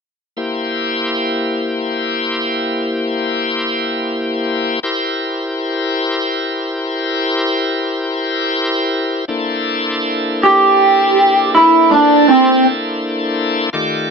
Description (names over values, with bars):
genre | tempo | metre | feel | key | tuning
blues | 54 BPM (dotted quarters) | 12/8 | straight | C mixolydian | A4 = 440 Hz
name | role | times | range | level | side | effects
bright tonewheel organ | sustained chords | 0.4-14.1 s | Eb3 to D5 | -17 LUFS | left 2 dB | overdrive, slow rotary speaker
electric guitar through a small old amp | melody | 10.4-12.6 s | C4 to G4 | -8 LUFS | right 2 dB | phaser
room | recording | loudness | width
light reverb | dry, close 1970s-style studio recording | -13 LUFS | side -5 dB against mid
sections
0.4-9.3 A section; 9.3-14.1 B section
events
clean electric guitar solo 9.3-14.1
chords
0.4 C7; 9.3 C13